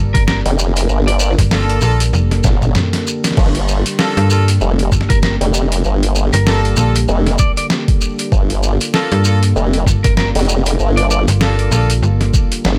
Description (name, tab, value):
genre	glitch hop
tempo	97 BPM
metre	4/4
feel	swing 58% on 16ths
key	G minor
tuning	A4 = 440 Hz
part	warm analog pad	sustained chords	0.0-12.8 s	D3 to Bb4	-26 LUFS	equal	chorus, vintage 12-bit sampler grit, sidechain pumping
part	slap-like FM bass	bass	0.0-12.3 s	F1 to G2	-16 LUFS	equal	none
part	lightly driven lead guitar	melody	0.1-1.3, 5.1-11.2 s	Bb4 to D5	-26 LUFS	equal	delay
part	boom bap sampler-style drum kit	drums	0.1-12.8 s	crash cymbal, hi-hat, snare drum, toms	-21 LUFS	equal	overdrive
part	electronic kick drum	drums	0.1-12.5 s	none	-17 LUFS	equal	overdrive
part	shekere	percussion	0.2-12.8 s	none	-26 LUFS	equal	none
part	formant-sweep wobble bass	bass	0.5-12.8 s	F1 to G1	-17 LUFS	equal	chorus
part	clear horn section	stabs	1.5-11.9 s	Bb3 to A4	-24 LUFS	equal	sidechain pumping, delay
room	little or no reverb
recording	none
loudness	-14 LUFS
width	mono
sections	0.0-12.8 A section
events	drum fill 2.4-3.4; break 2.8-3.4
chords	0.0 Gm7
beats	0.28 | 0.90 1.51 2.13 2.75 | 3.37 3.99 4.61 5.23 | 5.84 6.46 7.08 7.70 | 8.32 8.94 9.56 10.18 | 10.79 11.41 12.03 12.65